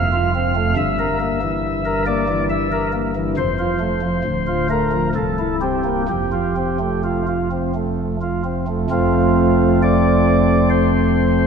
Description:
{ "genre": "classical, chorale-style piece for pipe organ", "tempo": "63-70 BPM", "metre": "3/4", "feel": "rubato", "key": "F major", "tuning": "A4 = 439 Hz", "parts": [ { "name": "pipe organ, flutes", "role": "solo", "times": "0.0-11.5 s", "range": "C1 to F5", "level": "-16 LUFS", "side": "equal", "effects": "none" } ], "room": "wet church reverb, RT60 2.5 s", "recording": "none", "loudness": "-16 LUFS", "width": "side -6 dB against mid", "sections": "0.0-8.9 A section; 8.9-11.5 B section", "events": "none", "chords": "0.0 F; 0.8 Edim/G; 3.4 F; 4.3 Dm; 5.2 C7; 6.1 F", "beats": "| 0.76 1.62 2.50 | 3.37 4.25 5.16 | 6.10 7.05 7.99 | 8.91 9.83 10.72" }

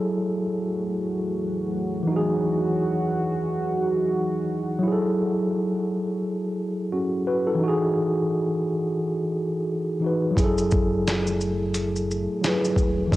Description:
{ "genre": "lo-fi hip hop", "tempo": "87 BPM", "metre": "4/4", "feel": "swing 59% on 16ths", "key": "F# dorian", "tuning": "A4 = 440 Hz", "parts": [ { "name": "mellow tine electric piano", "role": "accompaniment", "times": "0.0-13.2 s", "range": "E3 to B4", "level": "-23 LUFS", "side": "equal", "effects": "medium stereo tremolo, low-pass filter, cassette tape" }, { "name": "deep dark ambient pad", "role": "sustained chords", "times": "0.6-4.8, 11.6-13.2 s", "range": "E3 to F#4", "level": "-30 LUFS", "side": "right 1 dB", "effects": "chorus, built-in reverb, low-pass filter, cassette tape" }, { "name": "deep dub fingered electric bass", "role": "bass", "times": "10.4-13.2 s", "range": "D#1 to F#1", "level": "-30 LUFS", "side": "equal", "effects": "none" }, { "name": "dusty soul sampler-style drum kit", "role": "drums", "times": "10.4-13.2 s", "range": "hi-hat, kick drum, shaker, snare drum", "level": "-24 LUFS", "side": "equal", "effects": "cassette tape" } ], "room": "digital ambience", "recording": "home recording on cassette", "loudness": "-22 LUFS", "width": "side -16 dB against mid", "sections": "0.0-13.2 A section", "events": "none", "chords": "0.0 F#m9; 2.1 Emaj9; 4.8 F#m9; 7.6 Emaj9; 10.4 F#m9", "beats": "0.02 0.71 1.40 | 2.09 2.78 3.47 4.16 | 4.85 5.54 6.23 6.92 | 7.61 8.30 8.99 9.68 | 10.37 11.06 11.75 12.44 | 13.13" }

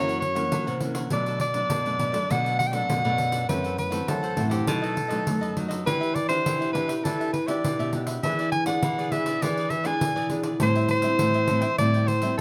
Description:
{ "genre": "samba and choro", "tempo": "101 BPM", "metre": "4/4", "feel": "straight", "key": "unclear", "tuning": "A4 = 437 Hz", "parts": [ { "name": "warm soprano saxophone", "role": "melody", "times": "0.0-12.4 s", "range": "G4 to G#5", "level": "-28 LUFS", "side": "equal", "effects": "none" }, { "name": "cavaquinho", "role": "accompaniment", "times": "0.0-12.4 s", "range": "D4 to G5", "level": "-39 LUFS", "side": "equal", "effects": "none" }, { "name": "nylon-string guitar", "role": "accompaniment", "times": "0.0-12.4 s", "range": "F#2 to G#4", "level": "-34 LUFS", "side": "equal", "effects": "none" }, { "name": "nylon-string guitar", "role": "bass", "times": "0.0-12.4 s", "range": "F#2 to A3", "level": "-30 LUFS", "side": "equal", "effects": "none" }, { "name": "pandeiro", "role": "percussion", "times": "0.1-12.4 s", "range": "none", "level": "-33 LUFS", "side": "equal", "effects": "none" } ], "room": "light reverb", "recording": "close, detailed microphones", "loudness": "-25 LUFS", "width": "mono", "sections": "0.0-12.4 A section", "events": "none", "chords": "0.0 F#7; 1.1 Bm7; 3.5 F#m7b5; 4.7 B7; 5.9 Em7; 8.2 E7; 10.6 Am7", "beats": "0.53 | 1.12 1.71 2.31 2.90 | 3.49 4.08 4.68 5.27 | 5.86 6.46 7.05 7.64 | 8.23 8.83 9.42 10.01 | 10.61 11.20 11.79 12.38" }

